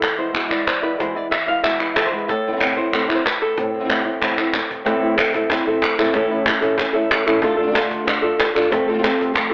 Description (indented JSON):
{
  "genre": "flamenco",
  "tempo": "186 BPM",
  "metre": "4/4",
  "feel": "straight",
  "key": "A harmonic minor, A minor from 4.9 s",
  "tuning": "A4 = 441 Hz",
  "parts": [
    { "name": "flamenco guitar", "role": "melody", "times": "0.0-9.5 s", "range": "A2 to F5", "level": "-23 LUFS", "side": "equal", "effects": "cassette tape" },
    { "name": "flamenco guitar", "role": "stabs", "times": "0.0-9.5 s", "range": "E2 to F4", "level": "-26 LUFS", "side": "equal", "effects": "cassette tape" },
    { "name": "cajon", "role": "percussion", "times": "0.0-9.5 s", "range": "none", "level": "-27 LUFS", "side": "equal", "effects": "none" },
    { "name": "palmas hand claps", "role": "percussion", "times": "0.0-9.5 s", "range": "none", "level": "-24 LUFS", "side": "equal", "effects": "none" }
  ],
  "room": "moderate spring reverb, RT60 1.8 s, small room ambience",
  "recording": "home recording on cassette, telephone sound",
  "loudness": "-19 LUFS",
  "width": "mono",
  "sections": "0.0-4.9 A section; 4.9-9.5 B section",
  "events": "drum fill 4.2-4.9",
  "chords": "0.0 E; 2.3 Amadd9; 4.9 Am; 6.2 A; 7.4 Dm; 8.7 F",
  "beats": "0.02 0.34 0.67 | 0.99 1.32 1.64 1.96 | 2.29 2.61 2.93 3.26 | 3.58 3.90 4.22 4.55 | 4.87 5.19 5.51 5.83 | 6.15 6.47 6.79 7.12 | 7.44 7.76 8.08 8.40 | 8.72 9.04 9.36"
}